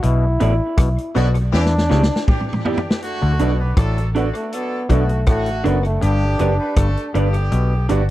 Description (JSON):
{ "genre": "roots reggae", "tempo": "80 BPM", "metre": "4/4", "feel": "straight", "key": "D major", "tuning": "A4 = 441 Hz", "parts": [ { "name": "clear trombone", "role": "melody", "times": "0.0-7.2 s", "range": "A3 to E4", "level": "-24 LUFS", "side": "equal", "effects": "tape echo" }, { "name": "auto-wah clav", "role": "riff", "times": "0.0-8.0 s", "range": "F#2 to E3", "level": "-26 LUFS", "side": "left 4 dB", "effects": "overdrive" }, { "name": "vintage muted fingered electric bass", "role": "bass", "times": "0.0-8.1 s", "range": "F#1 to E2", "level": "-18 LUFS", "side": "equal", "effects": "none" }, { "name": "vintage drum kit", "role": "drums", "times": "0.0-8.1 s", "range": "hi-hat, kick drum, rim click, snare drum, toms", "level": "-19 LUFS", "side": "equal", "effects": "tape echo" }, { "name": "electric guitar through a small old amp", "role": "accompaniment", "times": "0.4-8.0 s", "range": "B3 to D5", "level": "-24 LUFS", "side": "right 4 dB", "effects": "tape echo" }, { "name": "warm horn section", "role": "second line", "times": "1.1-8.0 s", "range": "D3 to B4", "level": "-27 LUFS", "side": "equal", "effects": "tape echo" } ], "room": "small room ambience", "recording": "dry, close 1970s-style studio recording", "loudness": "-16 LUFS", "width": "side -15 dB against mid", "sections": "0.0-3.0 A section; 3.0-8.1 B section", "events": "band accent 0.0-3.0; drum fill 1.5-3.0; trombone solo 3.0-8.1", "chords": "0.0 Bm7; 1.5 Em7; 3.0 D" }